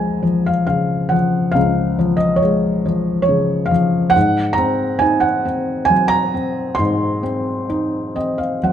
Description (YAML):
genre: classical, lyrical solo piano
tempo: 64-70 BPM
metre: 3/4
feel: rubato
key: Db major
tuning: A4 = 440 Hz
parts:
  - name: felt-muted upright piano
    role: solo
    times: 0.0-8.7 s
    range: Db2 to C6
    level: -15 LUFS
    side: equal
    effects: none
room: light reverb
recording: close, detailed microphones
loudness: -15 LUFS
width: side -9 dB against mid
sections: 0.0-8.7 A section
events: felt piano fill 7.7-8.7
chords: 0.0 Db; 4.2 Ab7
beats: 0.70 | 1.57 2.43 3.29 | 4.16 5.03 5.90 | 6.79 7.70 8.63